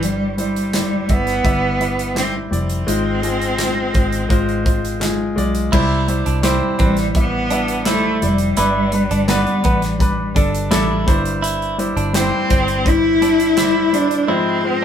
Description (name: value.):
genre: piano-driven pop.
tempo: 84 BPM.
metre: 4/4.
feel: straight.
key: C major.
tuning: A4 = 440 Hz.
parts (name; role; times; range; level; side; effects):
clear cello; melody; 0.0-14.8 s; G3 to E4; -19 LUFS; equal; none.
warm baby grand piano; accompaniment; 0.0-14.8 s; G2 to E5; -20 LUFS; left 1 dB; none.
vintage muted fingered electric bass; bass; 0.0-14.3 s; F1 to C2; -23 LUFS; equal; none.
modern studio drum kit; drums; 0.0-14.3 s; crash cymbal, handclaps, hi-hat, kick drum, snare drum; -21 LUFS; equal; none.
direct-recorded clean electric guitar; riff; 5.7-14.8 s; B3 to E4; -23 LUFS; right 2 dB; none.
room: moderate studio reverb, RT60 0.5 s.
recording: band playing live in one room.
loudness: -15 LUFS.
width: side -9 dB against mid.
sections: 0.0-5.7 A section; 5.7-14.8 B section.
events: none.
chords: 0.0 C/G; 2.9 Fm/Ab; 5.7 C; 8.6 G; 11.1 C/G; 14.3 Fm/Ab.